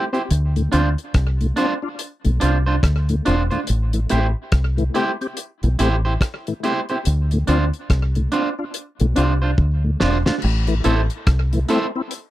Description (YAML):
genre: roots reggae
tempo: 71 BPM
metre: 4/4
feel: swing 61% on 16ths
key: A minor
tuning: A4 = 439 Hz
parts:
  - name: electric guitar at the edge of break-up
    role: accompaniment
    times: 0.0-11.9 s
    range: D4 to C5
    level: -23 LUFS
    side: right 4 dB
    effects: tape echo
  - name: tonewheel organ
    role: accompaniment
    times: 0.1-12.0 s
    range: D2 to G4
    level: -23 LUFS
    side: left 3 dB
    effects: overdrive, chorus vibrato, slow rotary speaker, slapback echo
  - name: damped 70s drum kit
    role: drums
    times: 0.1-12.3 s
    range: crash cymbal, hi-hat, kick drum, rim click, snare drum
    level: -23 LUFS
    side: equal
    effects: slapback echo
  - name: deep dub fingered electric bass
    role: bass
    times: 0.3-11.6 s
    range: E1 to D2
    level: -18 LUFS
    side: equal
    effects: none
room: little or no reverb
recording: dry, close 1970s-style studio recording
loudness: -17 LUFS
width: side -15 dB against mid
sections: 0.0-10.4 A section; 10.4-12.3 B section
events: drum fill 9.6-10.4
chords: 0.3 Dm7; 3.7 Am7; 7.1 Dm7; 10.4 Am